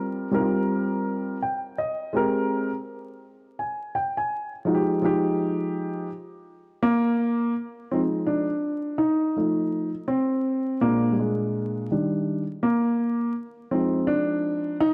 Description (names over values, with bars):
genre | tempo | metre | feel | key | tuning
hip hop | 83 BPM | 4/4 | swing 62% on 16ths | F dorian | A4 = 442 Hz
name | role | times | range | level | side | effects
dark grand piano | solo | 0.0-14.9 s | Bb2 to Ab5 | -25 LUFS | equal | none
room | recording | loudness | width
moderate plate reverb, RT60 2.5 s | dark, warm production, vinyl crackle | -25 LUFS | mono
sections
0.0-7.9 A section; 7.9-14.9 B section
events
grand piano fill 1.1-2.1; grand piano solo 7.9-14.9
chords
0.0 C7sus4/G; 2.1 Abmaj9; 4.3 Fm9; 7.9 Fm7; 9.4 F7; 10.8 Bb7; 11.9 Ebmaj7; 13.7 Fm7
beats
0.70 1.42 | 2.14 2.87 3.59 4.31 | 5.04 5.76 6.48 7.21 | 7.93 8.65 9.37 10.10 | 10.82 11.54 12.27 12.99 | 13.71 14.43